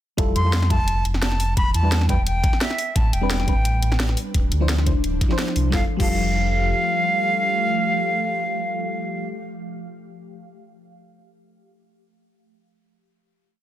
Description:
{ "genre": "liquid drum and bass", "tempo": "173 BPM", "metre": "4/4", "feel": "swing 54% on 16ths", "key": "F lydian", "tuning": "A4 = 440 Hz", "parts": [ { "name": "mellow FM electric piano", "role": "accompaniment", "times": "0.2-9.4 s", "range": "F3 to C5", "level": "-28 LUFS", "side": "left 1 dB", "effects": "chorus, phaser, tape echo" }, { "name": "sub bass with octave", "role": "bass", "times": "0.2-6.7 s", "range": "D1 to F2", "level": "-21 LUFS", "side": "equal", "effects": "tube saturation" }, { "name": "drum and bass drum kit", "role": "drums", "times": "0.2-6.1 s", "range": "crash cymbal, hi-hat, snare drum", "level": "-27 LUFS", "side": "equal", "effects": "overdrive, studio reverb" }, { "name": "electronic kick drum", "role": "drums", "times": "0.2-6.1 s", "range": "none", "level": "-21 LUFS", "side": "equal", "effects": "studio reverb" }, { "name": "breathy silver concert flute", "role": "melody", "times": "0.4-9.3 s", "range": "E5 to C6", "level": "-24 LUFS", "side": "equal", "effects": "digital delay" }, { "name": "ethereal airy pad", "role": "sustained chords", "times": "3.7-9.1 s", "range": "F3 to F5", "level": "-29 LUFS", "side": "left 1 dB", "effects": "ensemble chorus, built-in reverb, phaser, sidechain pumping" } ], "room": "light reverb", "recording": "dense, heavily limited modern master", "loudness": "-18 LUFS", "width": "side -12 dB against mid", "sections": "0.2-5.7 drop; 5.7-8.5 final chord", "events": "drop 0.2-5.7", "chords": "0.2 Fmaj9; 1.6 Em7; 2.8 Am11; 4.2 Dm9; 5.7 Fadd9" }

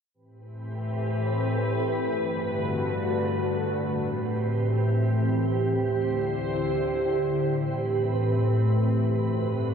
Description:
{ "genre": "hip hop", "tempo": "free time", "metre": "none", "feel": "none", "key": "A dorian", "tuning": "A4 = 440 Hz", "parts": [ { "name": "glassy FM pad", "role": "solo", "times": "0.5-9.7 s", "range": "D2 to C5", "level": "-24 LUFS", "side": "equal", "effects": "ensemble chorus, built-in reverb" } ], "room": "moderate huge ambient reverb, RT60 4.4 s", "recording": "none", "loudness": "-24 LUFS", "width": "side -7 dB against mid", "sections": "0.1-9.7 A section", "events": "none", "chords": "0.1 Am7; 1.9 Gmaj9; 3.7 Am7; 5.5 D7sus4; 7.3 Am7; 9.0 Gmaj9" }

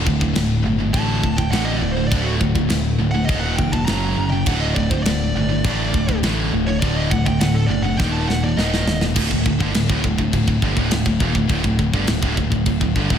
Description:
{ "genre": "heavy metal", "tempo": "102 BPM", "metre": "4/4", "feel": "straight", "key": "unclear", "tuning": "A4 = 440 Hz", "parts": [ { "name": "fuzz guitar", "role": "riff", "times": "0.0-13.2 s", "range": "D2 to F#3", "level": "-26 LUFS", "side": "equal", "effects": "distortion" }, { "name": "high-gain distorted guitar", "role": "riff", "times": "0.0-13.2 s", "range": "D2 to F#3", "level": "-24 LUFS", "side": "left 8 dB", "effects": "distortion" }, { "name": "tight distorted guitar", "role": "riff", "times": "0.0-13.2 s", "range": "D2 to F#3", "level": "-24 LUFS", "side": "right 8 dB", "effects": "distortion" }, { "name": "growling picked electric bass", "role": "bass", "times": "0.0-13.2 s", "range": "D1 to A1", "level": "-23 LUFS", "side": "equal", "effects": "overdrive" }, { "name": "tight metal drum kit", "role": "drums", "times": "0.1-13.2 s", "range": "china cymbal, crash cymbal, kick drum, snare drum", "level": "-23 LUFS", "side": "equal", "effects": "none" }, { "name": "high-gain lead guitar", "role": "melody", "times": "0.9-9.0 s", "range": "F#4 to Bb5", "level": "-27 LUFS", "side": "right 2 dB", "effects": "distortion" } ], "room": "light reverb, studio ambience", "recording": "none", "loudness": "-17 LUFS", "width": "side -8 dB against mid", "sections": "0.0-9.2 A section; 9.2-13.2 B section", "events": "lead electric guitar solo 0.0-9.2; drum fill 8.0-9.2", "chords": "0.0 D5; 3.3 Eb5; 3.9 F#5; 4.5 D5; 8.0 Eb5; 9.2 D5" }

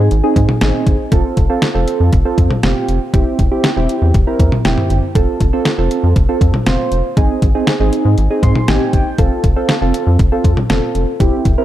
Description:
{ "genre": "synth-pop", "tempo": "119 BPM", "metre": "4/4", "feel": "straight", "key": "F major", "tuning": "A4 = 440 Hz", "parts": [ { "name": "soft electric-piano-like synth keys", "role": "accompaniment", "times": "0.0-11.6 s", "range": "C4 to C6", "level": "-17 LUFS", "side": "right 2 dB", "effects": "chorus, phaser" }, { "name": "rubbery square bass", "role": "bass", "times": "0.0-11.6 s", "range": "E1 to Ab2", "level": "-15 LUFS", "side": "equal", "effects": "none" }, { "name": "detuned 8-bit digital drum machine", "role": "drums", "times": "0.1-11.6 s", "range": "hi-hat, kick drum, snare drum, toms", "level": "-15 LUFS", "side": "equal", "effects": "overdrive" } ], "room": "light reverb", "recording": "dark, warm production", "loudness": "-12 LUFS", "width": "side -13 dB against mid", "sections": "0.0-11.6 A section", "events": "synth keys fill 8.2-9.2", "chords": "0.0 Ab; 1.1 F; 3.1 C/E; 5.2 F; 7.2 Ab; 9.2 F" }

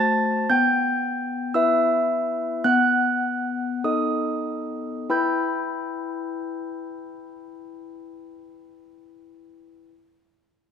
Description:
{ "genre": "classical, tune for handbells", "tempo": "47-58 BPM", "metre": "4/4", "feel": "straight", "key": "E minor", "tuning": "A4 = 440 Hz", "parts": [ { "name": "handbells", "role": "solo", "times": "0.0-9.9 s", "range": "A3 to A6", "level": "-22 LUFS", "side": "left 1 dB", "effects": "none" } ], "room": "moderate recital hall reverb, RT60 1.5 s", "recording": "none", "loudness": "-21 LUFS", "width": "side -8 dB against mid", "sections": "0.0-5.1 A section; 5.1-10.1 B section", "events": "slowing down 0.0-5.1", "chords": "0.5 Em/B; 2.7 B7; 5.1 Em" }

